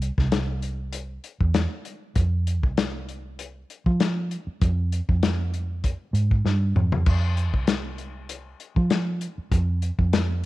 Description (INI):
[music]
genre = straight-eighth soul blues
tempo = 98 BPM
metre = 4/4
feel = swing 54% on 16ths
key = F minor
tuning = A4 = 440 Hz
[part]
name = vintage muted fingered electric bass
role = bass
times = 0.0-10.5 s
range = C2 to F3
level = -24 LUFS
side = right 1 dB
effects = none
[part]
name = warm soul drum kit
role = drums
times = 0.0-10.3 s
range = crash cymbal, hi-hat, kick drum, snare drum, toms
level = -24 LUFS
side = left 2 dB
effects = none
[sound]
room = little or no reverb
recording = 1960s-style stereo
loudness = -22 LUFS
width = side -17 dB against mid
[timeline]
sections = 0.0-7.1 A section; 7.1-10.5 A section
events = drum fill 6.5-7.1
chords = none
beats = 0.31 0.93 1.54 | 2.16 2.77 3.38 4.00 | 4.61 5.22 5.84 6.45 | 7.06 7.68 8.29 8.90 | 9.51 10.13